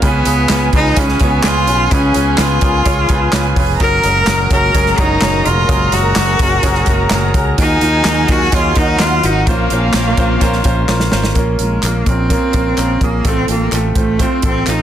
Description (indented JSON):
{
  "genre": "piano-driven pop",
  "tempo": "127 BPM",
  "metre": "4/4",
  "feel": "straight",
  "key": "unclear",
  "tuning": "A4 = 440 Hz",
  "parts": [
    { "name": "bright cello", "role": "melody", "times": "0.0-14.8 s", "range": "Ab3 to Bb4", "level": "-17 LUFS", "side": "equal", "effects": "none" },
    { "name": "dark studio violin section", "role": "second line", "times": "0.0-11.3 s", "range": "F4 to Bb5", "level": "-21 LUFS", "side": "equal", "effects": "none" },
    { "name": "clear baby grand piano", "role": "accompaniment", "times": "0.0-14.8 s", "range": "A2 to Db5", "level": "-19 LUFS", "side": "right 2 dB", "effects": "none" },
    { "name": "warm analog pad", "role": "sustained chords", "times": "0.0-11.3 s", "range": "Bb2 to Ab4", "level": "-26 LUFS", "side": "left 2 dB", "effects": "none" },
    { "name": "fingered electric bass", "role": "bass", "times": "0.0-14.8 s", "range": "F1 to Eb2", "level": "-18 LUFS", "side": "equal", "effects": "none" },
    { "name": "natural country drum kit", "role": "drums", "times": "0.0-14.8 s", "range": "handclaps, hi-hat, kick drum, snare drum", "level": "-17 LUFS", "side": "equal", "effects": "none" },
    { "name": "group handclap", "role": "percussion", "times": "0.5-14.8 s", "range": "none", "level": "-27 LUFS", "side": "left 5 dB", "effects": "none" }
  ],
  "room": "light reverb",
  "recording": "dense, heavily limited modern master",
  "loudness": "-11 LUFS",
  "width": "side -10 dB against mid",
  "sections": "0.0-11.4 A section; 11.4-14.8 B section",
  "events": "drum fill 10.9-11.4",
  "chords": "0.0 Db7; 3.8 Gbadd9; 7.6 Ebmadd9; 9.5 Bbmadd9; 11.4 Bbm; 13.2 F/A",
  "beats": "| 0.02 0.49 0.97 1.44 | 1.91 2.38 2.86 3.33 | 3.80 4.27 4.75 5.22 | 5.69 6.16 6.64 7.11 | 7.58 8.05 8.53 9.00 | 9.47 9.94 10.41 10.89 | 11.36 11.83 12.30 12.78 | 13.25 13.72 14.19 14.67"
}